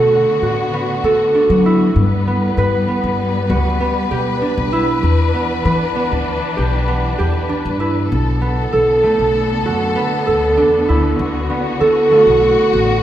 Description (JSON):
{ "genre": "contemporary instrumental, chamber music in an uneven meter", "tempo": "98 BPM", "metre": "5/4", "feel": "straight", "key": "unclear", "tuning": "A4 = 440 Hz", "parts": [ { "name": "warm symphonic string section", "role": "sustained chords", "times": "0.0-13.0 s", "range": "D3 to B4", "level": "-20 LUFS", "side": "left 3 dB", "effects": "none" }, { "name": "concert harp", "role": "arpeggios", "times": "0.0-13.0 s", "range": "A3 to B4", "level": "-16 LUFS", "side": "right 2 dB", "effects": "none" }, { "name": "upright bass", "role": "bass", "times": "0.0-13.0 s", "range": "A1 to F#3", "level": "-19 LUFS", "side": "left 1 dB", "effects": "none" } ], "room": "light reverb", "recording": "minimal, uncompressed stereo recording", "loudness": "-13 LUFS", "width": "side -12 dB against mid", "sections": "0.0-13.0 A section", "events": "none", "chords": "0.0 D6; 2.0 Gmaj7; 5.0 Em7; 8.1 Bm7; 11.2 D6" }